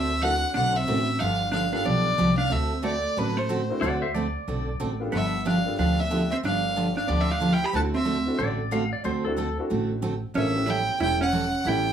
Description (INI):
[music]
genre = country, western swing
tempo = 184 BPM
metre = 4/4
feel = swing 62% on 8ths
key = D mixolydian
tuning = A4 = 440 Hz
[part]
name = rich fiddle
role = melody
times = 0.0-8.4, 10.4-11.9 s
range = B4 to B5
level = -27 LUFS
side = right 1 dB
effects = none
[part]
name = vintage hollow-body jazz guitar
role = second line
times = 0.0-11.9 s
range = F#3 to G4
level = -30 LUFS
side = right 2 dB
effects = none
[part]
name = picked steel-string acoustic guitar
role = accompaniment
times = 0.0-11.9 s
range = D3 to A4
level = -28 LUFS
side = right 2 dB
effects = none
[part]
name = upright bass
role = bass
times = 0.0-11.9 s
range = E1 to D2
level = -29 LUFS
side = equal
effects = none
[part]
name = warm upright piano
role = accompaniment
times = 0.2-11.9 s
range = B3 to B4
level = -32 LUFS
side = left 2 dB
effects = none
[part]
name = pedal steel guitar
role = second line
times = 3.8-5.0, 8.4-9.6 s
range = F#4 to F5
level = -30 LUFS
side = left 3 dB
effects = none
[sound]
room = moderate small room reverb, RT60 0.6 s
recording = studio ambience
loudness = -22 LUFS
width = side -9 dB against mid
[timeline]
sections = 0.0-11.9 A section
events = none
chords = 0.0 D9; 1.2 G9; 2.5 D7; 5.1 G7; 7.7 D9; 10.4 A9